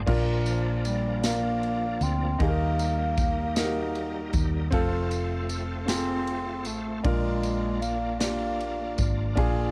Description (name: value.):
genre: slow gospel.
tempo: 52 BPM (dotted quarters).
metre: 6/8.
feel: straight.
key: unclear.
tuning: A4 = 440 Hz.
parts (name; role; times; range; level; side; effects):
warm concert grand piano; accompaniment; 0.0-9.7 s; Bb2 to Bb4; -33 LUFS; equal; cassette tape.
bright tonewheel organ; sustained chords; 0.0-9.7 s; F3 to F4; -40 LUFS; equal; slow rotary speaker, chorus vibrato, cassette tape.
hollow-body short-scale fingered electric bass; bass; 0.0-9.7 s; F1 to Eb2; -32 LUFS; equal; none.
modern studio drum kit; drums; 0.1-9.6 s; crash cymbal, kick drum, ride cymbal, snare drum; -33 LUFS; equal; cassette tape.
breathy bass clarinet; melody; 0.5-9.0 s; F3 to C4; -33 LUFS; equal; none.
tambourine; percussion; 0.5-9.3 s; none; -40 LUFS; equal; none.
room: little or no reverb.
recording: home recording on cassette.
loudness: -27 LUFS.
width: mono.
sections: 0.1-9.7 A section.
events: none.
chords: 0.1 Bb; 2.4 Eb; 4.7 F; 7.0 Bb.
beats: | 0.07 1.23 | 2.40 3.56 | 4.72 5.89 | 7.05 8.21 | 9.37.